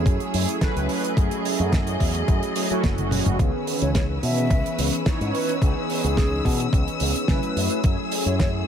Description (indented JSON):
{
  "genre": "nu-disco, nu disco",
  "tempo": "108 BPM",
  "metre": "4/4",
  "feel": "straight",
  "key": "C# minor",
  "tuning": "A4 = 440 Hz",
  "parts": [
    { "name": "mellow synth brass", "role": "accompaniment", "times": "0.0-8.7 s", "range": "D#3 to C#5", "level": "-26 LUFS", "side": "right 1 dB", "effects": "chorus, sidechain pumping, dub echo" },
    { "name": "rich studio string section", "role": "sustained chords", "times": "0.0-8.7 s", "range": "A3 to E6", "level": "-32 LUFS", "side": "left 1 dB", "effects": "sidechain pumping" },
    { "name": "picked electric bass with an envelope filter", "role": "bass", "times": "0.0-8.6 s", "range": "F#1 to C#3", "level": "-25 LUFS", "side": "equal", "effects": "none" },
    { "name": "damped 70s drum kit", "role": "drums", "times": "0.1-8.5 s", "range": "hi-hat, snare drum, toms", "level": "-28 LUFS", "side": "right 2 dB", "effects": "small room ambience" },
    { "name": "electronic kick drum", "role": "drums", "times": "0.1-8.5 s", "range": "none", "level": "-22 LUFS", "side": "equal", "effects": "small room ambience" },
    { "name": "breathy mellow concert flute", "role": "melody", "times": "3.8-8.5 s", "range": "G#4 to E5", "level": "-31 LUFS", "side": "left 1 dB", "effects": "dub echo" }
  ],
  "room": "small room ambience",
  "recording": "none",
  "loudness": "-20 LUFS",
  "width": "side -8 dB against mid",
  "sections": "0.0-8.7 A section",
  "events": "drum fill 3.0-3.4",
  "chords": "0.0 F#m9; 3.4 C#m7; 7.6 F#m9"
}